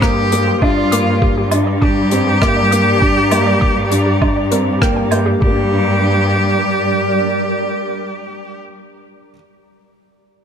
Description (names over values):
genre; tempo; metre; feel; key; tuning
piano and strings electronica; 100 BPM; 4/4; straight; G minor; A4 = 440 Hz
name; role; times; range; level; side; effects
bright cello; melody; 0.0-8.6 s; F4 to G4; -19 LUFS; left 1 dB; ping-pong delay
granular cloud pad; sustained chords; 0.0-8.6 s; G3 to Eb6; -22 LUFS; right 1 dB; built-in reverb, sidechain pumping
warbly dusty pluck; arpeggios; 0.0-5.7 s; G4 to G6; -25 LUFS; right 3 dB; chorus, sidechain pumping, ping-pong delay
dark grand piano; riff; 0.0-9.3 s; G3 to G4; -19 LUFS; left 1 dB; ping-pong delay
warm symphonic cello section; bass; 0.0-7.2 s; G2; -18 LUFS; equal; sidechain pumping
electronic kick drum; drums; 0.0-5.5 s; none; -17 LUFS; equal; none
soft brush drum kit; drums; 0.0-5.2 s; hi-hat, rim click, woodblock; -23 LUFS; equal; none
room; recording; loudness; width
light reverb, studio reverb; none; -12 LUFS; side -7 dB against mid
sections
0.0-5.4 A section; 5.4-7.8 B section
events
drop 0.0-5.4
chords
0.0 Cm7/G; 0.6 Gm